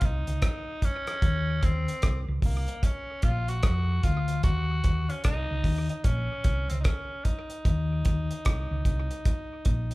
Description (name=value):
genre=roots reggae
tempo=75 BPM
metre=4/4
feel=swing 62% on 16ths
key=unclear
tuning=A4 = 441 Hz
part: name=raspy tenor saxophone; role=melody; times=0.0-9.9 s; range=Bb3 to Gb4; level=-34 LUFS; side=equal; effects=none
part: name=hollow-body short-scale fingered electric bass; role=bass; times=0.0-9.9 s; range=Bb1 to F2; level=-28 LUFS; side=equal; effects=none
part: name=cloth-damped thuddy drum kit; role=drums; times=0.0-9.9 s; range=hi-hat, kick drum, rim click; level=-27 LUFS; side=equal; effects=none
room=light reverb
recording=band playing live in one room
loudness=-25 LUFS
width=side -20 dB against mid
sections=0.0-9.9 A section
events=none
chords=0.0 N.C.; 1.2 Cm7; 2.8 Bb5; 4.4 Cdim; 6.0 Bbm; 7.7 Cm; 9.3 Bb5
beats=0.42 | 1.22 2.03 2.83 3.63 | 4.44 5.24 6.05 6.85 | 7.65 8.46 9.26